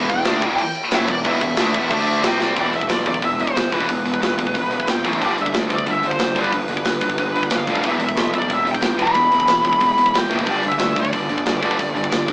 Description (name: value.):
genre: heavy metal.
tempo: 182 BPM.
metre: 4/4.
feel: straight.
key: E minor.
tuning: A4 = 440 Hz.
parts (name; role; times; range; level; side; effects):
heavy high-gain guitar; riff; 0.0-12.3 s; E2 to D4; -26 LUFS; right 1 dB; distortion.
high-gain distorted guitar; riff; 0.0-12.3 s; E2 to D4; -25 LUFS; left 1 dB; distortion.
fuzz picked electric bass; bass; 0.0-12.3 s; E1 to D2; -25 LUFS; equal; overdrive.
high-gain lead guitar; melody; 0.1-12.3 s; B4 to B5; -21 LUFS; equal; distortion.
tight metal drum kit; drums; 0.1-12.3 s; crash cymbal, hi-hat, kick drum, snare drum; -22 LUFS; equal; none.
room: light reverb.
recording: rough rehearsal-room recording, tube saturation, small speaker sound.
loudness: -16 LUFS.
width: side -23 dB against mid.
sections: 0.0-2.6 A section; 2.6-12.3 B section.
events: drum fill 2.4.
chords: 0.0 Em; 1.9 D5; 2.2 C5; 2.6 E5; 5.2 G; 7.8 Em; 10.5 G5.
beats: 0.26 0.59 0.92 | 1.25 1.58 1.91 2.23 | 2.56 2.89 3.22 3.55 | 3.88 4.21 4.54 4.87 | 5.20 5.53 5.86 6.19 | 6.52 6.85 7.18 7.51 | 7.84 8.17 8.50 8.83 | 9.16 9.49 9.82 10.15 | 10.48 10.81 11.14 11.47 | 11.79 12.12.